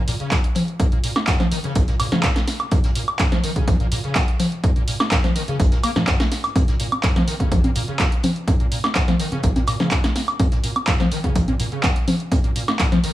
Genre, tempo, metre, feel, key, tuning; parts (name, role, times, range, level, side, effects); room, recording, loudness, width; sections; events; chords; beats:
acid house; 125 BPM; 4/4; straight; Bb minor; A4 = 440 Hz
overdriven acid bass; riff; 0.0-13.1 s; Bb1 to Bb3; -25 LUFS; equal; tube saturation, ensemble chorus, sidechain pumping, tape echo
punchy analog drum machine; drums; 0.1-13.1 s; congas, handclaps, hi-hat, snare drum, woodblock; -22 LUFS; equal
vintage brush drum kit; drums; 0.1-13.1 s; hi-hat, snare drum; -35 LUFS; right 2 dB
electronic kick drum; drums; 0.3-12.9 s; -20 LUFS; equal
light reverb, small room ambience; -17 LUFS; side -14 dB against mid
0.0-13.1 A section
0.32 | 0.80 1.28 1.76 2.24 | 2.72 3.20 3.68 4.16 | 4.64 5.12 5.60 6.08 | 6.56 7.04 7.52 8.00 | 8.48 8.96 9.44 9.92 | 10.40 10.88 11.36 11.84 | 12.32 12.80